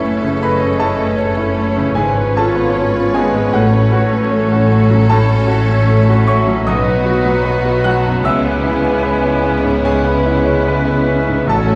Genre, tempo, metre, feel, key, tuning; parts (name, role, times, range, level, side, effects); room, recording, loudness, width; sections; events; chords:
classical; 76 BPM; 4/4; rubato; A4 = 440 Hz
bright concert grand piano; melody; 0.0-11.8 s; A1 to F#6; -18 LUFS; equal
clear chamber violin section; melody; 0.0-11.8 s; E4 to B4; -30 LUFS; equal
clear clarinet; second line; 0.0-11.8 s; A4 to E5; -28 LUFS; equal
clear oboe; second line; 0.0-11.8 s; A4 to C#5; -29 LUFS; equal
flute section; second line; 0.0-11.8 s; A4 to A5; -30 LUFS; equal
warm symphonic violin section; second line; 0.0-11.8 s; G#3 to F#4; -28 LUFS; equal
mellow bassoon; accompaniment; 0.0-11.8 s; E3 to G#3; -28 LUFS; equal
rich symphonic viola section; accompaniment; 0.0-11.8 s; A3 to C#4; -28 LUFS; equal
mellow French horn section; sustained chords; 0.0-11.8 s; A3 to G#4; -27 LUFS; equal
dark symphonic cello section; bass; 0.0-11.8 s; F#2 to C#3; -22 LUFS; equal
rich symphonic double bass section; bass; 0.0-11.8 s; F#1 to C#2; -22 LUFS; equal
wet recital hall reverb, RT60 1.4 s; heard from further back in the room, vinyl crackle; -14 LUFS; mono
0.0-11.8 A section
0.0 F#m7; 2.0 C#7/G#; 3.5 F#m/A; 6.7 B; 8.2 C#m7